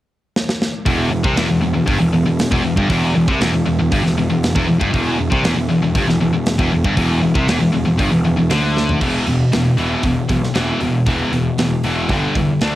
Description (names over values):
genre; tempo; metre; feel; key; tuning
heavy metal; 118 BPM; 4/4; straight; E minor; A4 = 442 Hz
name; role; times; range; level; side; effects
tight metal drum kit; drums; 0.4-12.7 s; crash cymbal, hi-hat, kick drum, snare drum, toms; -21 LUFS; equal; none
high-gain distorted guitar; riff; 0.9-12.8 s; E2 to D4; -22 LUFS; right 7 dB; distortion, cassette tape
scooped high-gain guitar; riff; 0.9-12.8 s; E2 to D4; -18 LUFS; left 3 dB; distortion, cassette tape
fuzz picked electric bass; bass; 0.9-12.8 s; E1 to E2; -21 LUFS; equal; overdrive
room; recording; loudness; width
little or no reverb; home recording on cassette; -14 LUFS; side -14 dB against mid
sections
0.9-9.0 A section; 9.0-12.8 B section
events
drum fill 0.4-0.9, 8.8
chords
0.0 N.C.; 0.9 Em; 9.0 E5; 12.1 G5